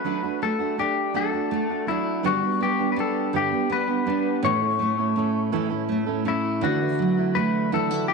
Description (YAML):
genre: pop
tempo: 55 BPM (dotted quarters)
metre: 6/8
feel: straight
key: unclear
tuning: A4 = 439 Hz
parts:
  - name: clean electric guitar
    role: melody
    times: 0.0-8.1 s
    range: E4 to C#5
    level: -25 LUFS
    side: left 8 dB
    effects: none
  - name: nylon-string guitar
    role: accompaniment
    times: 0.0-8.1 s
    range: A2 to G4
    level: -26 LUFS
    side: right 1 dB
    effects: double-tracked left and right
  - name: fingerpicked steel-string acoustic guitar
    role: arpeggios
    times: 0.0-8.1 s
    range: G2 to A4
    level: -28 LUFS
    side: right 13 dB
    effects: none
room: wet plate reverb, RT60 2.5 s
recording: 1960s-style stereo with parts hard left and right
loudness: -21 LUFS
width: side -4 dB against mid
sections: 0.0-6.6 A section; 6.6-8.1 B section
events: none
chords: 0.1 D/F#; 2.2 G; 4.4 A; 6.6 Dadd9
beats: | 0.05 1.15 | 2.24 3.34 | 4.43 5.53 | 6.62 7.71